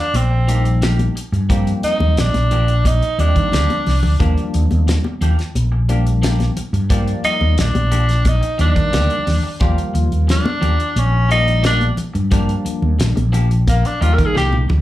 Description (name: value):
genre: electric jazz fusion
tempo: 89 BPM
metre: 4/4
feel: straight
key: Eb major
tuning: A4 = 440 Hz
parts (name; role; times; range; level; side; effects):
- warm tenor saxophone; melody; 0.0-14.6 s; Bb3 to Bb4; -19 LUFS; equal; slapback echo
- mellow fretless electric bass; bass; 0.1-14.8 s; Bb1 to Eb3; -16 LUFS; equal; none
- damped 70s drum kit; drums; 0.1-14.8 s; hi-hat, kick drum, snare drum, toms; -21 LUFS; equal; none
- congas; percussion; 0.1-14.8 s; none; -25 LUFS; left 2 dB; slapback echo
- clean electric guitar; stabs; 0.3-14.7 s; F3 to G4; -29 LUFS; left 1 dB; wide subtle chorus, slapback echo
- tine electric piano; accompaniment; 0.5-14.6 s; Eb3 to D5; -25 LUFS; left 1 dB; medium stereo tremolo, slapback echo
room: little or no reverb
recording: live gig heard through the venue's PA, club reverb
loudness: -14 LUFS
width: side -15 dB against mid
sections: 0.0-14.8 A section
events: tenor saxophone solo 0.0-14.8; drum fill 3.5-4.2, 14.4-14.8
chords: 0.0 Ebmaj9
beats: 0.14 0.82 | 1.49 2.17 2.85 3.52 | 4.20 4.88 5.55 6.23 | 6.91 7.58 8.26 8.93 | 9.61 10.29 10.96 11.64 | 12.32 12.99 13.67 14.35